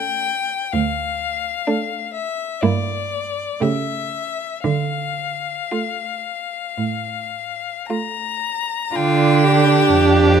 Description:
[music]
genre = classical, slow romantic movement for string quartet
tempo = 52-65 BPM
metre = 4/4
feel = rubato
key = D minor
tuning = A4 = 440 Hz
[part]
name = clear violin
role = melody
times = 0.0-10.4 s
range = D5 to Bb5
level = -23 LUFS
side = left 8 dB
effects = none
[part]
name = rich violin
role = second line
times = 0.0-10.4 s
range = C#4 to G4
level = -20 LUFS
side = left 2 dB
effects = none
[part]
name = warm viola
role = accompaniment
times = 0.0-10.4 s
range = A3 to D4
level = -20 LUFS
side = right 7 dB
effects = none
[part]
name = rich cello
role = bass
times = 0.7-10.4 s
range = D2 to D3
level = -20 LUFS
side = right 5 dB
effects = none
[sound]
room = moderate recital hall reverb, RT60 1.5 s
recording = close, detailed microphones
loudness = -18 LUFS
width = side -7 dB against mid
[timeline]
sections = 0.0-9.0 A section; 9.0-10.4 A section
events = none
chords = 0.0 A; 0.7 Dm; 2.6 Edim/G; 3.6 A7/C#; 4.6 Dm

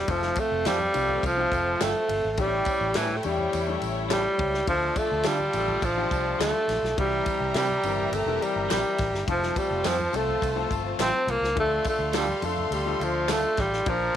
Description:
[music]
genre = uptempo 1960s-style soul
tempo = 104 BPM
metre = 4/4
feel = straight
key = F major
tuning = A4 = 440 Hz
[part]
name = breathy tenor saxophone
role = melody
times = 0.0-14.2 s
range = E3 to C4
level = -25 LUFS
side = right 1 dB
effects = none
[part]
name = warm studio violin section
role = second line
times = 0.1-14.2 s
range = C4 to C6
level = -34 LUFS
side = equal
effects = none
[part]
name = clear concert grand piano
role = accompaniment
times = 0.1-14.2 s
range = E3 to Bb4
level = -33 LUFS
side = left 13 dB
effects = none
[part]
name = vintage muted fingered electric bass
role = bass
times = 0.1-14.1 s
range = E1 to D3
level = -33 LUFS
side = right 1 dB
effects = none
[part]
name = natural country drum kit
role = drums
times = 0.1-14.0 s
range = kick drum, ride cymbal, snare drum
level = -33 LUFS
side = left 2 dB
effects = none
[part]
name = congas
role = percussion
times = 0.1-14.1 s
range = none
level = -44 LUFS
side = right 7 dB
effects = none
[part]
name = tambourine and handclaps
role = percussion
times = 0.1-13.7 s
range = none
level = -40 LUFS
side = left 2 dB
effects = none
[part]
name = electric guitar through a small old amp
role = stabs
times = 0.7-13.4 s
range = G3 to A4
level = -33 LUFS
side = right 12 dB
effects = none
[sound]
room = light reverb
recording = 1960s-style stereo with parts hard left and right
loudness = -23 LUFS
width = side -10 dB against mid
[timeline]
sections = 0.1-14.2 A section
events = none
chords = 0.1 F; 2.4 A7; 4.7 Dm; 7.0 C; 9.3 F; 11.6 Dm

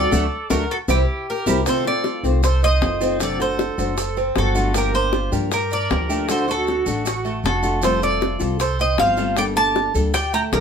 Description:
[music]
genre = latin, Cuban son and guajira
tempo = 156 BPM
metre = 4/4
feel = straight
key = G minor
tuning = A4 = 439 Hz
[part]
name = Cuban tres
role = melody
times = 0.0-10.6 s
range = G4 to Bb5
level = -22 LUFS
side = right 1 dB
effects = none
[part]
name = clear trumpet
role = second line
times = 0.0-10.6 s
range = E4 to G5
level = -30 LUFS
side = right 2 dB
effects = none
[part]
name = nylon-string guitar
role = accompaniment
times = 0.0-10.6 s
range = C3 to A4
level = -25 LUFS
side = left 4 dB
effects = none
[part]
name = Cuban tres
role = arpeggios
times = 0.0-10.6 s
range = A3 to C5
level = -27 LUFS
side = right 3 dB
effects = none
[part]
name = upright bass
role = bass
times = 0.0-10.6 s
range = F1 to G2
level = -23 LUFS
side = equal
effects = none
[part]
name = bongos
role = percussion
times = 0.1-10.6 s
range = none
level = -26 LUFS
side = left 3 dB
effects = none
[part]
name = maracas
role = percussion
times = 0.1-10.6 s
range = none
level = -33 LUFS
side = right 4 dB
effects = none
[sound]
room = moderate studio ambience, RT60 0.5 s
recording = band playing live in one room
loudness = -18 LUFS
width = side -7 dB against mid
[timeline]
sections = 0.0-1.7 A section; 1.7-10.6 B section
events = band accent 0.1-1.7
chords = 0.1 D; 0.9 C7; 1.7 F7; 3.2 D7/F#; 4.8 Gm7; 6.3 D; 7.8 Fadd9; 9.4 Gmadd9

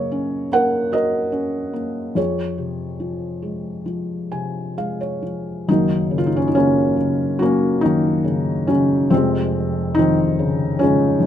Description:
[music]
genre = classical, lyrical solo piano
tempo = 64-75 BPM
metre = 4/4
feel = rubato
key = unclear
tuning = A4 = 441 Hz
[part]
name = felt-muted upright piano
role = solo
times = 0.0-11.3 s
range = F1 to Ab5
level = -17 LUFS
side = equal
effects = none
[sound]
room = light reverb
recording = minimal, uncompressed stereo recording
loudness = -18 LUFS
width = side -10 dB against mid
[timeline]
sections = 0.0-5.7 A section; 5.7-11.3 A section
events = felt piano fill 3.9-5.7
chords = 0.0 Gb; 2.2 Dbmaj7/F; 5.7 Gb; 9.1 Dbmaj7/F

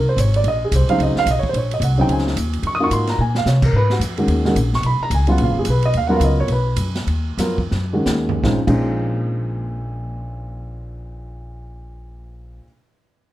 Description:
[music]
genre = modal jazz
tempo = 153-219 BPM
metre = 4/4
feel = swing 61% on 8ths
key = Bb minor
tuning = A4 = 440 Hz
[part]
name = warm upright piano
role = accompaniment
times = 0.0-12.6 s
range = Bb2 to Eb6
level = -20 LUFS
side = right 1 dB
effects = none
[part]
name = upright bass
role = bass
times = 0.0-12.6 s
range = Gb1 to C3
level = -20 LUFS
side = equal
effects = none
[part]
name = open jazz drum kit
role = drums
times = 0.2-8.8 s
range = crash cymbal, hi-hat, kick drum, ride cymbal, snare drum, toms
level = -27 LUFS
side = right 2 dB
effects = none
[sound]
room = moderate club reverb, RT60 0.8 s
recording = dark, warm production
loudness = -16 LUFS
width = side -14 dB against mid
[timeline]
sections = 0.0-8.4 A section; 8.4-11.6 B section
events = drum fill 3.2, 7.7-8.4; slowing down 5.9-8.4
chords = 0.0 Bbm11; 3.7 Abm11; 8.4 Bbm11

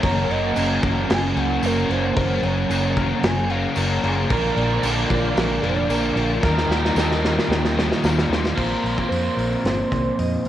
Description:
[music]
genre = rock, shoegaze and dream pop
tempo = 113 BPM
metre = 4/4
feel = straight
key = unclear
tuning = A4 = 439 Hz
[part]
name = pure sine lead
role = melody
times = 0.0-10.5 s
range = F4 to Ab5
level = -29 LUFS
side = equal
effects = chorus, phaser, analog delay
[part]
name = string machine, violas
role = sustained chords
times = 0.0-8.5 s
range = Bb3 to Eb6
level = -31 LUFS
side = right 1 dB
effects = ensemble chorus
[part]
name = electric guitar through a small old amp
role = arpeggios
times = 0.0-10.5 s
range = F4 to Eb5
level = -32 LUFS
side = equal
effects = analog chorus, analog delay
[part]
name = biting overdriven guitar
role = riff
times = 0.0-10.5 s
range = Bb2 to C5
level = -26 LUFS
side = right 7 dB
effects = reverse reverb
[part]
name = crunchy overdriven guitar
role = riff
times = 0.0-10.5 s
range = Gb2 to F4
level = -25 LUFS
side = left 6 dB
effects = ensemble chorus
[part]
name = vintage muted fingered electric bass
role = bass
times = 0.0-10.5 s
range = F1 to F2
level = -25 LUFS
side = equal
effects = none
[part]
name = loose indie drum kit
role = drums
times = 0.0-10.5 s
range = crash cymbal, hi-hat, kick drum, snare drum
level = -25 LUFS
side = equal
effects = cassette tape
[part]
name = tambourine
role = percussion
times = 0.6-8.2 s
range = none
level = -39 LUFS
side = right 4 dB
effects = none
[sound]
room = light reverb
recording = home recording on cassette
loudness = -18 LUFS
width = side -12 dB against mid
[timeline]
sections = 0.0-8.6 A section; 8.6-10.5 B section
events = drum fill 6.4-8.6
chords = 0.0 Gbadd9; 4.3 Bb; 6.4 Eb; 8.6 Bbsus2

